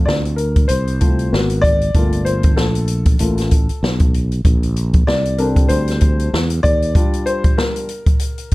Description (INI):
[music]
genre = hip hop, jazz-hop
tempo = 96 BPM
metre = 4/4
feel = swing 57% on 16ths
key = Bb major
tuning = A4 = 440 Hz
[part]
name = warm baby grand piano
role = accompaniment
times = 0.0-8.5 s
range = G3 to D5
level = -20 LUFS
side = left 2 dB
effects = plate reverb
[part]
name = sustaining fretless electric bass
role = bass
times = 0.0-6.9 s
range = G1 to E2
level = -19 LUFS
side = equal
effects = none
[part]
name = open jazz drum kit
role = drums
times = 0.1-8.5 s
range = hi-hat, kick drum, snare drum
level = -16 LUFS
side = equal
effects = none
[sound]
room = little or no reverb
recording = dark, warm production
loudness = -14 LUFS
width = side -20 dB against mid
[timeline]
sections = 0.0-8.5 A section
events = grand piano solo 0.0-8.5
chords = 0.0 Dm7; 1.3 Abm9; 1.9 Gm9; 4.4 Bbmaj13; 6.6 Ebmaj9